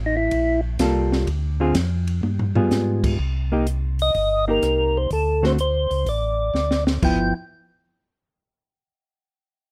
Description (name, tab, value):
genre	soul jazz organ trio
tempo	125 BPM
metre	4/4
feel	swing 68% on 8ths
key	G minor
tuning	A4 = 440 Hz
part	mellow tonewheel organ	bass	0.0-7.3 s	G1 to Ab2	-26 LUFS	equal	slow rotary speaker
part	percussive tonewheel organ	melody	0.1-0.6, 4.0-7.3 s	Eb4 to G5	-23 LUFS	equal	slow rotary speaker
part	compact cocktail drum kit	drums	0.3-7.2 s	crash cymbal, hi-hat, kick drum, ride cymbal, rim click, snare drum, toms	-28 LUFS	equal	none
part	hollow-body jazz guitar	accompaniment	0.8-7.3 s	D3 to A4	-25 LUFS	equal	none
room	little or no reverb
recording	close, detailed microphones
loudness	-21 LUFS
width	mono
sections	0.0-3.2 A section; 3.2-7.0 B section; 7.0-8.9 C section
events	drum fill 2.2-2.7, 6.5-7.0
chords	0.0 Gm9; 1.3 Dm7b5; 2.2 G7b9; 3.2 Cm7; 5.1 D7(no3); 7.0 G6